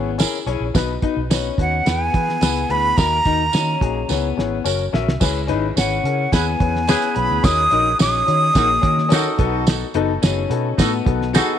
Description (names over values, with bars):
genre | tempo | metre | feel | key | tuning
uptempo 1960s-style soul | 108 BPM | 4/4 | straight | unclear | A4 = 440 Hz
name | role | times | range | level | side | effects
warm upright piano | accompaniment | 0.0-11.5 s | A#3 to E5 | -25 LUFS | left 10 dB | none
electric guitar through a small old amp | riff | 0.0-11.6 s | A#3 to D#4 | -26 LUFS | left 12 dB | none
vintage muted fingered electric bass | bass | 0.0-11.4 s | F#1 to E3 | -24 LUFS | right 2 dB | none
cloth-damped thuddy drum kit | drums | 0.2-11.5 s | crash cymbal, hi-hat, kick drum, snare drum | -19 LUFS | right 1 dB | none
tambourine | percussion | 0.2-11.5 s | none | -29 LUFS | right 15 dB | none
breathy bright jazz flute | melody | 1.6-9.4 s | F#5 to D#6 | -19 LUFS | right 2 dB | none
warm horn section | second line | 6.3-11.6 s | D#4 to B4 | -25 LUFS | right 1 dB | tape echo
room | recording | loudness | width
light reverb | 1960s-style stereo with parts hard left and right | -16 LUFS | side -9 dB against mid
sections
0.0-5.2 A section; 5.2-11.6 B section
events
drum fill 4.1-5.2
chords
0.0 C#m; 0.7 B; 1.9 E; 3.0 D#m; 4.1 C#m; 4.7 F#; 5.2 C#m7; 7.4 D#m7; 9.4 B7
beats
0.19 | 0.75 1.31 1.86 2.42 | 2.98 3.54 4.10 4.65 | 5.21 5.77 6.33 6.88 | 7.44 8.00 8.56 9.12 | 9.67 10.23 10.79 11.35